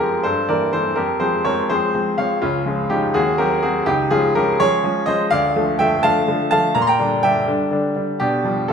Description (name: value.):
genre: classical-period piano sonatina.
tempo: 83 BPM (dotted quarters).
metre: 6/8.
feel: straight.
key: unclear.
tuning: A4 = 438 Hz.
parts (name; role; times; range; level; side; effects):
clear baby grand piano; solo; 0.0-8.7 s; Db2 to C6; -16 LUFS; equal; none.
room: wet recital hall reverb, RT60 1.8 s.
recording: minimal, uncompressed stereo recording.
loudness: -16 LUFS.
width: side -6 dB against mid.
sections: 0.0-8.7 A section.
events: none.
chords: 0.2 Edim/G; 1.0 Fm; 2.4 Db; 3.2 Cdim/Eb; 3.9 Db; 5.3 Dm; 6.8 Gm/Bb; 8.2 G7/B.